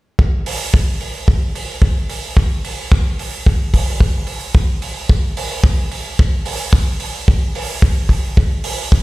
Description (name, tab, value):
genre	nu-disco, nu disco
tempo	110 BPM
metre	4/4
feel	swing 54% on 16ths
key	none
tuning	none
part	kick drum	drums	0.2-9.0 s	none	-12 LUFS	equal	none
part	hi-hat	drums	0.5-8.8 s	none	-25 LUFS	right 3 dB	none
room	little or no reverb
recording	played on a big sound system in a bare room, stone room reverb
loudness	-14 LUFS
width	side -21 dB against mid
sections	0.2-9.0 A section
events	none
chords	none